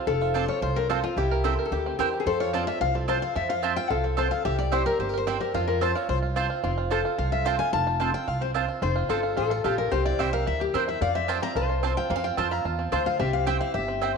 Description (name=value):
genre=bluegrass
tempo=219 BPM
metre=4/4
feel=straight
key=F major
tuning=A4 = 440 Hz
part: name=lap resonator guitar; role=second line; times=0.0-14.2 s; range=F4 to D5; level=-30 LUFS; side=left 8 dB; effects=none
part: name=bluegrass banjo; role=arpeggios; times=0.0-14.2 s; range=F3 to Bb4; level=-30 LUFS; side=right 9 dB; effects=none
part: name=picked steel-string acoustic guitar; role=accompaniment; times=0.1-14.2 s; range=E4 to Bb5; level=-29 LUFS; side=left 9 dB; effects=none
part: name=upright bass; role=bass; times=0.1-14.1 s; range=F1 to F2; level=-29 LUFS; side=right 1 dB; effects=none
part: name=mandolin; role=stabs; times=0.3-14.1 s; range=C4 to A5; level=-31 LUFS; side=right 10 dB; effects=none
room=wet echo chamber reverb, RT60 1.5 s, small room ambience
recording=1960s-style stereo with parts hard left and right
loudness=-23 LUFS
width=side -5 dB against mid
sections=0.0-6.6 A section; 6.6-14.2 A section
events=steel-string acoustic guitar solo 0.0-14.2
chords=0.0 F; 1.2 C; 2.3 F; 4.5 C; 5.5 F; 9.9 C; 11.0 F; 13.2 C